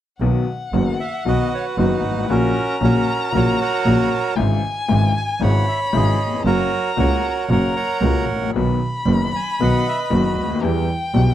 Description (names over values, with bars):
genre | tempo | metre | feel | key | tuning
tango | 115 BPM | 4/4 | rubato | B major | A4 = 440 Hz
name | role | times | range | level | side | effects
warm violin | second line | 0.2-11.3 s | F#5 to B5 | -26 LUFS | left 3 dB | slapback echo
bright upright piano | accompaniment | 0.2-11.3 s | F#1 to G4 | -22 LUFS | left 7 dB | none
clear double bass | bass | 0.2-11.3 s | F#1 to E2 | -20 LUFS | right 2 dB | none
bandoneon | melody | 1.0-10.6 s | C#4 to A#5 | -23 LUFS | right 5 dB | none
room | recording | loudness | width
studio reverb | dry, close 1970s-style studio recording | -17 LUFS | side -12 dB against mid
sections
0.2-11.3 A section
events
none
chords
0.2 B; 2.3 F#/A#; 4.4 C#m/G#; 6.5 F#; 8.5 B; 10.6 Em